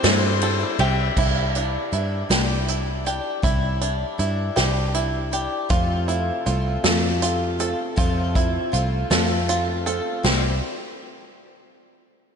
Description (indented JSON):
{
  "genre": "indie folk with a building arrangement",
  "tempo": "53 BPM (dotted quarters)",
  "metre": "6/8",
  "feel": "straight",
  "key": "C major",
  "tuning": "A4 = 440 Hz",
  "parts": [
    { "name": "warm fiddle", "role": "second line", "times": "0.0-1.2 s", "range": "C5 to E5", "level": "-30 LUFS", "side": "left 6 dB", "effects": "slapback echo" },
    { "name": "picked twelve-string acoustic guitar", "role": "accompaniment", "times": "0.0-10.6 s", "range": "F2 to F4", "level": "-29 LUFS", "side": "left 5 dB", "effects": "slapback echo" },
    { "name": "warm upright piano", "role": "accompaniment", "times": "0.0-1.2, 5.7-10.6 s", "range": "F1 to E5", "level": "-33 LUFS", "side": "right 5 dB", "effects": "slapback echo" },
    { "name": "bluegrass banjo", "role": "arpeggios", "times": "0.0-10.6 s", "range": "C4 to A4", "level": "-27 LUFS", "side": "right 3 dB", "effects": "slapback echo" },
    { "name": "picked electric bass", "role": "bass", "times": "0.0-10.6 s", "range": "C2 to G2", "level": "-24 LUFS", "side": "equal", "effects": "none" },
    { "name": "unplugged drum kit", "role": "drums", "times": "0.0-10.4 s", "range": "crash cymbal, hi-hat, kick drum, ride cymbal, snare drum", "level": "-23 LUFS", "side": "equal", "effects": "none" }
  ],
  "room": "moderate lush hall reverb, RT60 2.8 s",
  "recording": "big arena sound, nothing above 10.5 kHz",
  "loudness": "-20 LUFS",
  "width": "side -6 dB against mid",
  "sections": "0.0-1.2 A section; 1.2-10.2 B section; 10.2-12.4 C section",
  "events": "none",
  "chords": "0.0 C; 1.2 Cadd9; 5.7 F; 10.2 Cadd9"
}